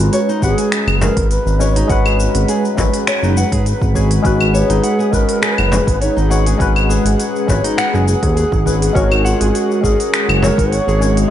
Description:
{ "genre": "organic downtempo", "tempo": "102 BPM", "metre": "4/4", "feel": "straight", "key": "G# minor", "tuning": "A4 = 440 Hz", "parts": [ { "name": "mellow hollow low Native American-style wooden flute", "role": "melody", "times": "0.0-11.2 s", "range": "D#4 to C#5", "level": "-22 LUFS", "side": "equal", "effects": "ping-pong delay" }, { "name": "tine electric piano", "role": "accompaniment", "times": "0.0-11.3 s", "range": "G#3 to C#5", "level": "-20 LUFS", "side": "left 3 dB", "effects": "overdrive, phaser, sidechain pumping, ping-pong delay" }, { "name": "airy breathy pad", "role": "sustained chords", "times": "0.0-11.3 s", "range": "G#3 to A#5", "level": "-22 LUFS", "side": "right 2 dB", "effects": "chorus, sidechain pumping" }, { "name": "smooth gliding synth bass", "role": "bass", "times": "0.0-11.2 s", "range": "F#1 to D#2", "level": "-16 LUFS", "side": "equal", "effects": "sidechain pumping" }, { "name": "organic electronic drum kit", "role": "drums", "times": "0.0-11.3 s", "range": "claves, finger snaps, hi-hat, shaker", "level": "-22 LUFS", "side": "left 1 dB", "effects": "overdrive" }, { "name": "nylon-string guitar", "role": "arpeggios", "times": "0.1-11.0 s", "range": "D#4 to F#5", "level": "-23 LUFS", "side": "left 1 dB", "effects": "ping-pong delay" }, { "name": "electronic kick drum", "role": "drums", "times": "0.4-10.7 s", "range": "none", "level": "-19 LUFS", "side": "equal", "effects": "none" }, { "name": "frame drum", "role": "percussion", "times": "1.0-10.6 s", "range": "none", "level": "-22 LUFS", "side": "left 2 dB", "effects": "none" } ], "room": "light reverb, digital ambience", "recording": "nothing above 10.9 kHz", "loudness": "-12 LUFS", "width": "side -11 dB against mid", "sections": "0.0-11.3 A section", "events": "none", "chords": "0.0 G#m7; 9.0 F#add9" }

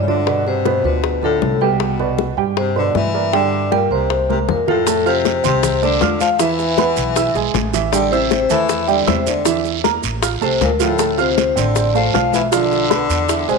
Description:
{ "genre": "Afro-Cuban jazz", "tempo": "157 BPM", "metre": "4/4", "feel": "straight", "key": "unclear", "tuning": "A4 = 442 Hz", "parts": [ { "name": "vibraphone with medium mallets", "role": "melody", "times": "0.0-13.6 s", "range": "A4 to F5", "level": "-20 LUFS", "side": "left 2 dB", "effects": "none" }, { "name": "breathy baritone saxophone", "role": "second line", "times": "0.0-13.6 s", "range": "A2 to F3", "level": "-22 LUFS", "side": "left 9 dB", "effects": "none" }, { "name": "upright bass", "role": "bass", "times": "0.0-13.6 s", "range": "A1 to G2", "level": "-24 LUFS", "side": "right 1 dB", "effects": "none" }, { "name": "dark baby grand piano", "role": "accompaniment", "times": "0.1-13.6 s", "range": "B2 to F6", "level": "-20 LUFS", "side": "right 14 dB", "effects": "none" }, { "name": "bongos", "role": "percussion", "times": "0.1-13.6 s", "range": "none", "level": "-24 LUFS", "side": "left 13 dB", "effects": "none" }, { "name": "congas", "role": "percussion", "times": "0.1-13.6 s", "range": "none", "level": "-26 LUFS", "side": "left 11 dB", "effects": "none" }, { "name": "guiro", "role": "percussion", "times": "4.9-13.6 s", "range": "none", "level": "-27 LUFS", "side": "right 15 dB", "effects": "none" }, { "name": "maracas", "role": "percussion", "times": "4.9-13.6 s", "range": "none", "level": "-29 LUFS", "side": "right 16 dB", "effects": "none" } ], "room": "moderate echo chamber reverb, RT60 2.2 s", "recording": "1960s-style stereo with parts hard left and right", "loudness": "-14 LUFS", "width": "side -4 dB against mid", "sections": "0.0-4.9 A section; 4.9-13.6 B section", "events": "drum fill 4.3-4.9", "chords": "0.3 G9; 1.8 Cmaj9; 3.3 Gm; 4.1 Fadd11/C; 4.9 F6; 6.4 E; 7.9 Am7; 9.5 Bbmaj7#11; 10.2 Bbmaj9/A; 11.0 Dm7; 12.5 Bdim" }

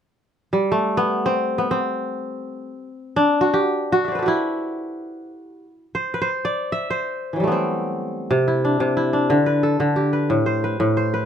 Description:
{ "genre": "west african traditional", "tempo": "free time", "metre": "none", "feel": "none", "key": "C lydian", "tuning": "A4 = 438 Hz", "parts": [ { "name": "kora", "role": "arpeggios", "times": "0.5-11.3 s", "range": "A2 to E5", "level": "-19 LUFS", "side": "equal", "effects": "none" } ], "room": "light reverb", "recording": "minimal, uncompressed stereo recording", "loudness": "-19 LUFS", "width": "side -8 dB against mid", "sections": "0.3-8.3 A section; 8.3-11.3 B section", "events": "kora solo 0.3-8.3", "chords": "0.3 C; 9.3 D5; 10.3 Am" }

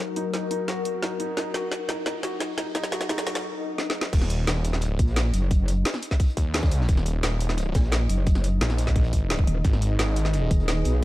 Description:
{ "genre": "dark technical drum and bass", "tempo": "174 BPM", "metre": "4/4", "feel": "straight", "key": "Eb minor", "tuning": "A4 = 440 Hz", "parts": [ { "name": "sweeping resonant pad", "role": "sustained chords", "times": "0.0-4.1 s", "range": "Gb3 to Bb4", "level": "-36 LUFS", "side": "left 5 dB", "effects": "chorus, sidechain pumping" }, { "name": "riser and swell", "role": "sound effects", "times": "0.5-4.1 s", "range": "none", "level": "-37 LUFS", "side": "left 1 dB", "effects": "none" }, { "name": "warbly tape-like pad", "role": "texture", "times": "0.0-11.0 s", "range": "Eb4 to Eb5", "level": "-34 LUFS", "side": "left 2 dB", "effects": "chorus, built-in reverb, sidechain pumping" }, { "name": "felt-muted upright piano", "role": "arpeggios", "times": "0.2-3.4 s", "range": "Eb4 to Gb4", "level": "-34 LUFS", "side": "right 1 dB", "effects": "sidechain pumping, low-pass filter, tape echo" }, { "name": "drum and bass drum kit", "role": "drums", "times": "0.2-10.9 s", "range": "crash cymbal, hi-hat, snare drum", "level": "-29 LUFS", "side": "equal", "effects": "overdrive" }, { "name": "snarling distorted saw bass", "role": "bass", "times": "4.1-10.5 s", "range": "Eb1 to Eb2", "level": "-24 LUFS", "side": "equal", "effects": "tube saturation, sidechain pumping" }, { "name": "crunchy breakbeat drum kit", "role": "drums", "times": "4.1-10.9 s", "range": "hi-hat, snare drum", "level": "-39 LUFS", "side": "equal", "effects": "none" }, { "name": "electronic kick drum", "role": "drums", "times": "4.1-10.6 s", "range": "none", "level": "-21 LUFS", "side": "equal", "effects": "none" }, { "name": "metallic wobble bass", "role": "bass", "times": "5.0-11.0 s", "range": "Eb1 to Cb2", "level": "-23 LUFS", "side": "equal", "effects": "chorus" } ], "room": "digital ambience", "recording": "dark, warm production", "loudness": "-22 LUFS", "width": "side -16 dB against mid", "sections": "0.0-4.1 A section; 4.1-11.0 B section", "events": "build-up 0.0-4.1; drum fill 0.0-3.4, 3.8-4.1; filter sweep on analog synth pad 0.0-4.1; swell 3.4-4.1; drop 4.1-11.0", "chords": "0.0 Ebm; 9.6 Abm" }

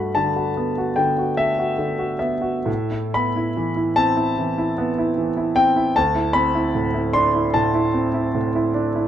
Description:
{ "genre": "classical, impressionist solo piano", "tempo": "74 BPM", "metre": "4/4", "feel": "rubato", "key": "unclear", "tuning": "A4 = 439 Hz", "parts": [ { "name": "clear concert grand piano", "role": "solo", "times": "0.0-9.1 s", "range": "D2 to C6", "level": "-18 LUFS", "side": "equal", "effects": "none" } ], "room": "moderate studio reverb, RT60 0.7 s", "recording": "dark, warm production", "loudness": "-18 LUFS", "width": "side -10 dB against mid", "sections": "0.0-9.1 A section", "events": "none", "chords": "0.0 Gmaj9; 2.7 Amadd9; 6.0 Dsus2" }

